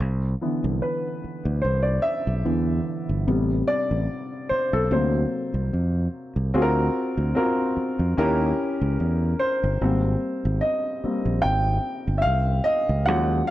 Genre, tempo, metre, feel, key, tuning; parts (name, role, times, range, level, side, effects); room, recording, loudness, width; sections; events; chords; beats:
lush 1970s-style soul; 73 BPM; 4/4; swing 54% on 16ths; Ab major from 9.8 s; A4 = 440 Hz
fingered electric bass; bass; 0.0-13.4 s; G1 to E#2; -23 LUFS; equal
warm baby grand piano; accompaniment; 0.4-13.5 s; C3 to G5; -24 LUFS; left 1 dB
light reverb, small room ambience; -21 LUFS; side -14 dB against mid
0.0-6.5 A section; 6.5-9.8 B section; 9.8-13.5 C section
grand piano solo 0.0-6.5, 9.8-13.5
0.0 Cmaj7; 3.3 Am7; 4.9 D7alt; 8.2 Eb7b9; 9.8 Abmaj9
| 0.00 0.82 1.64 2.45 | 3.27 4.09 4.91 5.72 | 6.54 7.36 8.18 8.99 | 9.81 10.63 11.44 12.26 | 13.08